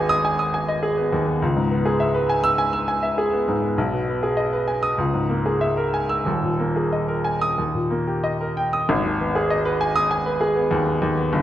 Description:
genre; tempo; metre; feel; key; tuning
classical, virtuoso piano study; 90-104 BPM; 4/4; rubato; G# minor; A4 = 440 Hz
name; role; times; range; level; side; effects
clear grand piano; solo; 0.0-11.4 s; D#1 to E6; -19 LUFS; equal; none
room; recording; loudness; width
wet recital hall reverb, RT60 1.4 s; none; -19 LUFS; side -12 dB against mid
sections
0.0-8.9 A section; 8.9-11.4 B section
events
none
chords
0.0 G#m; 1.4 C#m7; 3.8 G#m/B; 5.0 A#m7b5/C#; 6.3 D#sus4; 7.6 D#; 8.9 G#m

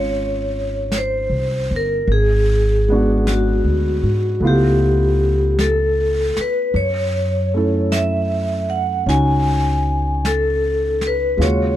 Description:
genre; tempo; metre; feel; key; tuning
jazz ballad; 52 BPM; 4/4; swing 68% on 8ths; unclear; A4 = 440 Hz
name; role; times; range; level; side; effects
vibraphone with medium hard mallets; melody; 0.0-11.8 s; Gb4 to Ab5; -20 LUFS; left 1 dB; none
warm grand piano; accompaniment; 0.0-11.8 s; Db3 to A4; -24 LUFS; right 2 dB; none
upright bass; bass; 0.0-11.8 s; G1 to Ab2; -19 LUFS; equal; none
jazz brush drum kit; drums; 0.9-11.8 s; brushed snare drum, hi-hat, snare drum; -30 LUFS; equal; none
room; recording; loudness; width
little or no reverb; dry, close 1970s-style studio recording; -16 LUFS; side -12 dB against mid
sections
0.0-11.8 A section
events
none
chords
0.0 Dbmaj9; 2.1 Abm7b5; 4.4 Db7alt; 6.7 Gbm9

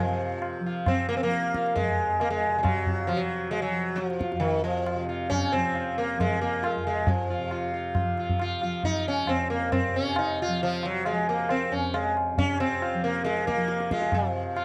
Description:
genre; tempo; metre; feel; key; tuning
indian classical, Hindustani; 136 BPM; 4/4; straight; F raga bhairavi; A4 = 440 Hz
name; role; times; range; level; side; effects
sitar; melody; 0.0-14.6 s; Eb3 to F4; -28 LUFS; equal; none
tanpura; drone; 0.0-14.6 s; F2 to F3; -36 LUFS; equal; none
tabla; percussion; 0.4-14.6 s; none; -33 LUFS; equal; none
room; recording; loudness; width
light reverb; dry, close 1970s-style studio recording; -27 LUFS; mono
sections
0.0-14.1 A section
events
none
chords
none

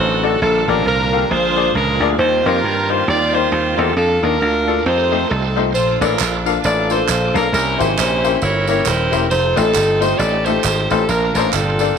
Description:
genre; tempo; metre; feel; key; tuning
uptempo gospel; 135 BPM; 4/4; swing 59% on 8ths; Bb major; A4 = 438 Hz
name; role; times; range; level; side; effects
clear saxophone section; melody; 0.0-12.0 s; C4 to D5; -17 LUFS; equal; none
bright baby grand piano; accompaniment; 0.0-11.9 s; Bb2 to F5; -21 LUFS; left 12 dB; none
bright tonewheel organ; sustained chords; 0.0-12.0 s; D3 to D5; -26 LUFS; right 13 dB; slow rotary speaker, chorus vibrato
dry thumbed slap bass; bass; 0.0-11.9 s; Eb1 to G2; -20 LUFS; right 1 dB; none
tambourine and handclaps; percussion; 5.7-11.9 s; none; -25 LUFS; right 18 dB; none
room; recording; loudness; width
light reverb; 1960s-style stereo with parts hard left and right; -14 LUFS; side -7 dB against mid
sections
0.0-12.0 A section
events
none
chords
0.4 Gm9; 1.3 Bb7; 2.2 Eb69; 4.0 Bb; 4.9 F9; 5.7 Bbmaj7; 7.5 C7b9; 9.3 F9; 11.1 Bbmaj9

